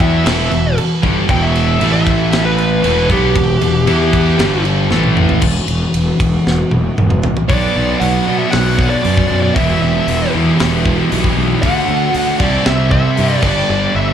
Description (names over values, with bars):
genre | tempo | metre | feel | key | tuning
hard rock | 116 BPM | 4/4 | straight | E minor | A4 = 438 Hz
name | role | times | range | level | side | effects
smooth overdriven lead guitar | melody | 0.0-14.1 s | G4 to G5 | -18 LUFS | equal | slapback echo
sweeping resonant pad | sustained chords | 0.0-14.1 s | E3 to C6 | -26 LUFS | left 2 dB | none
distorted electric guitar | riff | 0.0-14.1 s | E2 to G4 | -21 LUFS | left 1 dB | distortion, slapback echo
high-gain distorted guitar | riff | 0.0-14.1 s | E2 to E4 | -21 LUFS | left 10 dB | distortion, slapback echo
sludgy distorted guitar | riff | 0.0-14.1 s | E2 to E4 | -20 LUFS | right 9 dB | overdrive
fuzz fingered electric bass | bass | 0.0-14.1 s | E1 to B2 | -17 LUFS | left 1 dB | overdrive
tight metal drum kit | drums | 0.0-13.5 s | crash cymbal, hi-hat, kick drum, ride cymbal, snare drum, toms | -19 LUFS | equal | none
room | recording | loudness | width
light reverb | live gig heard through the venue's PA, club reverb | -11 LUFS | side -9 dB against mid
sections
0.0-5.4 A section; 5.4-7.5 B section; 7.5-14.1 C section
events
lead electric guitar solo 0.0-5.4; drum fill 4.9-5.4, 6.5-7.5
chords
0.0 Em; 1.8 A5; 2.8 Em; 4.4 G5; 4.9 A5; 5.4 E5; 7.5 Bm; 9.6 Em; 11.6 D; 12.4 C; 13.4 G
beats
0.26 0.77 | 1.29 1.81 2.32 2.84 | 3.36 3.88 4.39 4.91 | 5.43 5.94 6.46 6.98 | 7.49 8.01 8.53 9.04 | 9.56 10.08 10.60 11.11 | 11.63 12.14 12.66 13.17 | 13.69